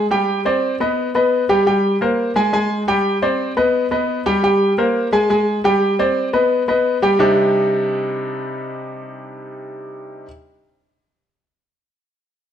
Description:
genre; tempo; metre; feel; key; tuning
latin; 173 BPM; 4/4; straight; C minor; A4 = 443 Hz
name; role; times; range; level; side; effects
clear grand piano; solo; 0.0-10.3 s; C3 to Ab5; -16 LUFS; equal; none
room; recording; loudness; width
wet large studio reverb, RT60 1.3 s; none; -15 LUFS; side -9 dB against mid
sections
0.0-1.7 A section; 1.7-7.2 B section; 7.2-10.0 C section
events
none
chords
0.3 Cmadd9; 1.0 B; 1.7 C5; 2.4 N.C.; 3.0 Cmadd9; 3.7 B; 4.4 C5; 5.1 N.C.; 5.8 Cmadd9; 6.5 B; 7.2 Cmadd9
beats
| 0.29 0.63 0.98 1.32 | 1.67 2.01 2.36 2.70 | 3.05 3.40 3.74 4.09 | 4.43 4.78 5.12 5.47 | 5.82 6.16 6.51 6.86 | 7.20 7.55 7.89 8.24 | 8.59 8.93 9.28 9.63

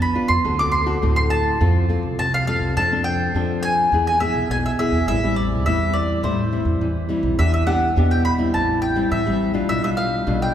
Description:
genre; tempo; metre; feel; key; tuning
samba and choro; 104 BPM; 4/4; straight; A minor, E minor from 7.4 s; A4 = 440 Hz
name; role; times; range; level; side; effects
mandolin; melody; 0.0-10.5 s; C5 to D6; -22 LUFS; equal; none
nylon-string guitar; accompaniment; 0.0-10.5 s; A2 to B4; -22 LUFS; left 2 dB; none
upright bass; bass; 0.0-10.5 s; A1 to A2; -22 LUFS; right 1 dB; none
room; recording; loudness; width
wet church reverb, RT60 3.6 s; recorded in a church or concert hall; -17 LUFS; side -10 dB against mid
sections
0.0-7.4 A section; 7.4-10.5 B section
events
none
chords
0.5 D7; 1.6 F; 2.8 Dm7/F; 3.9 E; 5.1 Am7; 7.4 Em7; 8.5 Am7; 9.7 G7/B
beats
| 0.45 1.03 1.61 2.19 | 2.76 3.34 3.92 4.50 | 5.07 5.65 6.23 6.81 | 7.38 7.96 8.54 9.12 | 9.69 10.27

